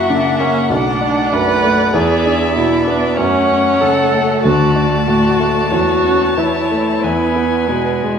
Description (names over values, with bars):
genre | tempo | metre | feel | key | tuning
quick classical-period movement for piano quintet | 90-99 BPM | 4/4 | rubato | unclear | A4 = 440 Hz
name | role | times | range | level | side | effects
warm violin | melody | 0.0-8.1 s | E5 to A5 | -21 LUFS | left 5 dB | none
rich cello | second line | 0.0-8.2 s | E3 to B3 | -23 LUFS | right 6 dB | none
rich violin | second line | 0.0-8.1 s | B4 to E5 | -22 LUFS | left 1 dB | none
clear grand piano | accompaniment | 0.0-8.2 s | B1 to E4 | -17 LUFS | left 1 dB | none
rich viola | accompaniment | 0.0-8.0 s | C#4 to B4 | -17 LUFS | right 2 dB | none
room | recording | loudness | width
wet recital hall reverb, RT60 1.5 s | recorded in a church or concert hall | -12 LUFS | side -7 dB against mid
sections
0.0-8.2 A section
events
none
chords
0.0 F#7; 0.7 Bm7; 1.9 E7; 3.2 F#m; 4.4 D; 5.7 A/E; 7.0 E